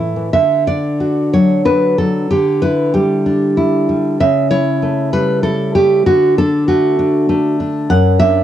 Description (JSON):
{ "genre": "romantic piece for solo classical guitar", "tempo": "95 BPM", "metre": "3/4", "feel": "uneven beats, rubato", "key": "D major", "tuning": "A4 = 441 Hz", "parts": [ { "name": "nylon-string guitar", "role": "solo", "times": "0.0-8.4 s", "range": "F#2 to F#5", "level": "-12 LUFS", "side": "equal", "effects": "cassette tape" } ], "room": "light reverb, small room ambience", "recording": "home recording on cassette", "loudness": "-12 LUFS", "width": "side -11 dB against mid", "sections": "0.3-8.4 A section", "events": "none", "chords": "0.3 D; 2.3 Em7/D; 4.2 A7/C#; 6.1 D; 7.9 D/F#", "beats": "| 0.34 1.00 1.65 | 2.30 2.94 3.57 | 4.20 4.83 5.44 | 6.06 6.68 7.30 | 7.91" }